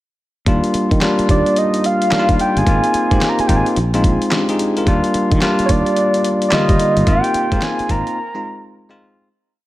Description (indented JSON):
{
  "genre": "R&B, new jack swing",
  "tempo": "109 BPM",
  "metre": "4/4",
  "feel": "swing 63% on 16ths",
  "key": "Eb major",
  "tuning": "A4 = 439 Hz",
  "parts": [
    { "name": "bell-like tine electric piano", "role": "accompaniment", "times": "0.5-9.3 s", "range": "D3 to Bb4", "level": "-17 LUFS", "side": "left 1 dB", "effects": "none" },
    { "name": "sustaining fretless electric bass", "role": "bass", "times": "0.5-8.0 s", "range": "G1 to Eb3", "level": "-19 LUFS", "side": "equal", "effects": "none" },
    { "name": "dusty soul sampler-style drum kit", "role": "drums", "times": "0.5-8.2 s", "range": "handclaps, hi-hat, kick drum, snare drum", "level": "-19 LUFS", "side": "equal", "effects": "none" },
    { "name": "soft octave-layered synth lead", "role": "melody", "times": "1.3-9.0 s", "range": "Db5 to Bb5", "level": "-19 LUFS", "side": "right 1 dB", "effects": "chorus" }
  ],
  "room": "light reverb, digital ambience",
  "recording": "none",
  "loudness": "-13 LUFS",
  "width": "side -16 dB against mid",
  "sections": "0.5-9.3 verse",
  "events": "fade-out 7.1-9.3; break 8.2-9.3",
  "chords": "0.5 Ebmaj7; 2.7 Ab6; 3.8 Bb7sus4; 4.9 Ebmaj7; 7.1 Ab6; 8.2 Bb7sus4"
}